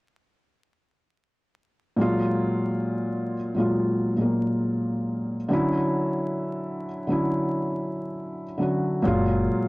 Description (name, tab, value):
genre	lo-fi hip hop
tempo	68 BPM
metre	4/4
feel	swing 57% on 16ths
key	F# major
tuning	A4 = 440 Hz
part	felt-muted upright piano	accompaniment	2.0-9.7 s	A#2 to F#4	-23 LUFS	equal	low-pass filter
part	upright bass	bass	9.1-9.5 s	F#1	-26 LUFS	equal	none
room	moderate spring reverb, RT60 2.1 s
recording	vinyl crackle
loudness	-23 LUFS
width	side -23 dB against mid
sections	2.0-9.7 A section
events	none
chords	2.0 F#maj9; 5.5 Dmaj9; 9.0 F#maj9